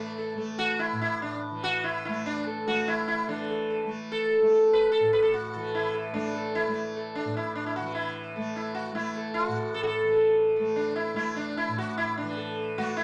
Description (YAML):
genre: indian classical, Hindustani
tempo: 148 BPM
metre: 4/4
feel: straight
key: unclear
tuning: A4 = 438 Hz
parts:
  - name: sitar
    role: melody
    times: 0.0-13.0 s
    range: A3 to B4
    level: -28 LUFS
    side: equal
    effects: none
  - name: tanpura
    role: drone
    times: 0.0-13.0 s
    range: A2 to A3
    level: -37 LUFS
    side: equal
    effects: none
room: moderate club reverb, RT60 0.6 s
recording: none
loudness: -28 LUFS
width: mono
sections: 0.0-3.3 A section; 3.3-13.0 B section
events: speeding up 0.0-13.0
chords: none